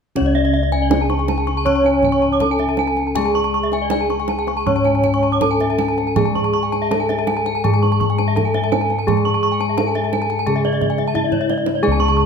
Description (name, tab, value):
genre	Balinese gamelan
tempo	80-90 BPM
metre	4/4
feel	straight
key	C# pelog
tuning	A4 = 440 Hz
part	gamelan-type bronze metallophone	melody	0.2-12.3 s	C#4 to C#5	-21 LUFS	right 1 dB	none
part	gamelan-type bronze metallophone	accompaniment	0.2-12.3 s	C#3 to C#4	-24 LUFS	left 5 dB	none
part	gamelan-type bronze metallophone	arpeggios	0.2-12.2 s	C#5 to C#6	-24 LUFS	left 6 dB	none
part	gamelan-type bossed gongs	bass	0.2-12.3 s	C#2 to G#4	-22 LUFS	left 1 dB	none
part	kendang	percussion	0.2-12.1 s	none	-25 LUFS	right 6 dB	none
part	gamelan-type bronze metallophone	arpeggios	0.3-12.2 s	D5+35c to D6+35c	-23 LUFS	right 5 dB	none
room	moderate recital hall reverb, RT60 1.3 s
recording	none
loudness	-15 LUFS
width	side -6 dB against mid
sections	0.2-11.8 A section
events	drum fill 11.2-11.8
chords	none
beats	| 0.16 0.91 1.66 2.41 | 3.16 3.91 4.66 5.41 | 6.16 6.91 7.64 8.36 | 9.07 9.78 10.47 11.15 | 11.83